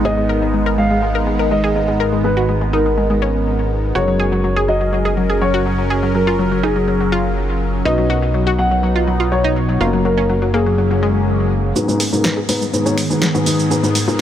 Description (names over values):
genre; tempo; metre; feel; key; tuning
progressive house; 123 BPM; 4/4; straight; G# minor; A4 = 440 Hz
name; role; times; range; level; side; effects
dark grand piano; melody; 0.0-11.7 s; G#4 to F#5; -21 LUFS; equal; dub echo
evolving wavetable pad; sustained chords; 0.0-14.2 s; G#2 to A#4; -22 LUFS; right 1 dB; phaser, built-in reverb
felt-muted upright piano; stabs; 0.0-14.2 s; G#2 to D#5; -22 LUFS; left 2 dB; low-pass filter, dub echo
fat analog bass; bass; 0.0-11.7 s; F#1 to B1; -20 LUFS; equal; none
analog pluck; arpeggios; 0.1-14.1 s; F#3 to A#4; -20 LUFS; left 2 dB; chorus, dub echo
swell and riser; sound effects; 11.1-14.2 s; none; -34 LUFS; right 2 dB; none
house drum kit; drums; 11.8-14.2 s; finger snaps, hi-hat, shaker, snare drum; -20 LUFS; right 1 dB; low-pass filter on perc, low-pass filter on hats, low-pass filter on snare
room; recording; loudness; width
light reverb; none; -14 LUFS; side -10 dB against mid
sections
0.0-11.8 A section; 11.8-14.2 B section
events
swell 11.1-11.8; build-up 11.8-14.2; filter sweep on felt piano 11.8-14.2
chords
0.0 G#m; 4.0 F#add9; 7.9 B; 9.8 F#; 11.8 G#m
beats
| 0.05 0.54 1.02 1.51 | 2.00 2.49 2.98 3.46 | 3.95 4.44 4.93 5.42 | 5.90 6.39 6.88 7.37 | 7.85 8.34 8.83 9.32 | 9.80 10.29 10.78 11.27 | 11.76 12.24 12.73 13.22 | 13.71 14.20